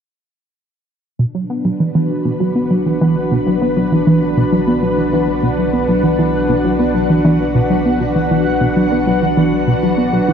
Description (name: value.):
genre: ambient, sequencer-driven space music.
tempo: 99 BPM.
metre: 4/4.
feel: straight.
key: B minor.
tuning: A4 = 441 Hz.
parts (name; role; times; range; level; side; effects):
string machine, full ensemble; sustained chords; 1.5-10.3 s; D4 to F#5; -17 LUFS; left 1 dB; ensemble chorus, shimmer reverb.
tight sequenced synth; riff; 1.2-10.3 s; B2 to B3; -15 LUFS; right 1 dB; chorus, analog delay.
round analog bass; bass; 1.2-10.3 s; B1; -29 LUFS; left 1 dB; none.
room: wet huge ambient reverb, RT60 8.4 s.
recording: dark, warm production.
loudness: -13 LUFS.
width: side -7 dB against mid.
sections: 1.2-10.3 A section.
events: fade-in on analog synth bass 1.2-10.3; filter sweep on string machine 1.2-10.3.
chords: 1.2 Bm.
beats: | 1.19 1.80 2.41 3.01 | 3.62 4.22 4.83 5.44 | 6.04 6.65 7.25 7.86 | 8.47 9.07 9.68 10.29.